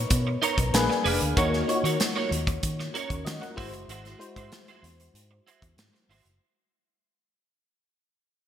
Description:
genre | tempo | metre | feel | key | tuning
polished 1980s jazz-funk pop | 95 BPM | 4/4 | straight | unclear | A4 = 440 Hz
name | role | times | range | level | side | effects
FM electric piano | accompaniment | 0.0-6.4 s | G#3 to A#5 | -29 LUFS | left 2 dB | ensemble chorus
vintage muted fingered electric bass | bass | 0.0-6.4 s | E#1 to D#3 | -30 LUFS | equal | none
modern studio drum kit | drums | 0.1-6.4 s | hi-hat, kick drum, snare drum | -28 LUFS | equal | gated reverb
electric guitar at the edge of break-up | riff | 0.3-6.3 s | D#4 to D5 | -31 LUFS | right 6 dB | ensemble chorus
room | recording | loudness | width
moderate lush hall reverb, RT60 2.3 s | bright 1980s-style digital production | -23 LUFS | side -10 dB against mid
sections
0.0-6.4 A section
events
fade-out 0.0-6.4; FM electric piano fill 0.1-1.4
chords
0.0 Bmaj9; 0.7 A#7b9; 1.4 D#m7; 3.6 G#7b13

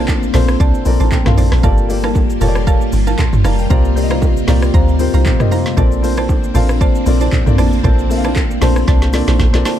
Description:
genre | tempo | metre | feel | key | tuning
amapiano | 116 BPM | 4/4 | swing 55% on 16ths | unclear | A4 = 440 Hz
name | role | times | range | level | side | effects
dark grand piano | accompaniment | 0.0-9.8 s | Bb3 to C6 | -21 LUFS | left 8 dB | none
string machine, full ensemble | sustained chords | 0.0-9.8 s | C3 to A5 | -20 LUFS | right 1 dB | ensemble chorus, sidechain pumping
mallet-like synth pluck | stabs | 0.0-9.8 s | Bb4 to Bb5 | -24 LUFS | right 6 dB | chorus, tape echo
deep log drum bass | bass | 0.0-9.6 s | F1 to D2 | -15 LUFS | equal | none
deep house drum kit | drums | 0.1-9.8 s | handclaps, hi-hat, kick drum, rim click, shaker, snare drum, toms | -16 LUFS | equal | none
bongos and congas | percussion | 0.1-9.8 s | none | -25 LUFS | right 6 dB | none
room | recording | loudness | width
little or no reverb | dark, warm production | -11 LUFS | side -11 dB against mid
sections
0.0-9.8 A section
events
grand piano fill 0.6-1.6; drum fill 8.9-9.8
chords
0.0 Bbmaj9; 1.6 Gm9; 3.7 C7sus4; 5.8 Bbmaj9

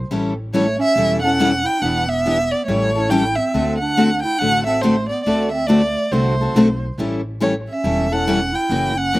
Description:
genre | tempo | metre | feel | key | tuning
acoustic string swing (jazz manouche) | 140 BPM | 4/4 | swing 64% on 8ths | A mixolydian | A4 = 440 Hz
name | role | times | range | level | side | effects
upright bass | bass | 0.0-9.2 s | E1 to D2 | -25 LUFS | equal | none
picked steel-string acoustic guitar | accompaniment | 0.1-9.2 s | C#3 to A4 | -19 LUFS | left 2 dB | none
picked steel-string acoustic guitar | accompaniment | 0.1-9.2 s | D3 to B4 | -28 LUFS | right 4 dB | slapback echo
warm violin | melody | 0.5-9.2 s | C5 to G5 | -20 LUFS | right 1 dB | slapback echo
breathy clarinet | second line | 0.5-9.2 s | A3 to E4 | -25 LUFS | right 3 dB | none
room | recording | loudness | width
little or no reverb | recorded outdoors, with no room sound | -16 LUFS | side -18 dB against mid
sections
0.0-9.2 A section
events
none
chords
0.1 A7; 1.8 Em7; 2.7 A7; 3.5 D7; 7.0 A7

